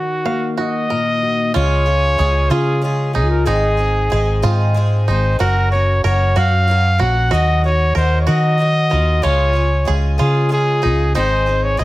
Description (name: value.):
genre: folk.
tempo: 62 BPM (dotted quarters).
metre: 6/8.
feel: straight.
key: Db major.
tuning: A4 = 440 Hz.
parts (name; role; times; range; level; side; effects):
warm trumpet; melody; 0.0-11.8 s; Gb4 to Gb5; -19 LUFS; equal; tape echo.
fingerpicked steel-string acoustic guitar; accompaniment; 0.0-1.5 s; Bb2 to Gb4; -22 LUFS; left 4 dB; none.
bluegrass banjo; arpeggios; 0.0-11.8 s; Eb4 to F5; -25 LUFS; right 6 dB; none.
picked twelve-string acoustic guitar; accompaniment; 1.5-11.8 s; Ab2 to Bb4; -23 LUFS; left 3 dB; none.
hollow-body short-scale fingered electric bass; bass; 1.6-11.8 s; Gb1 to Eb3; -16 LUFS; equal; none.
room: light reverb.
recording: none.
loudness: -14 LUFS.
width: side -17 dB against mid.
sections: 0.0-1.5 A section; 1.5-11.8 B section.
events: break 0.0-1.5.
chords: 0.0 Ebm; 1.5 Db; 3.5 Ab; 5.4 Gb; 7.3 Ebm; 9.2 Db; 11.2 Ab.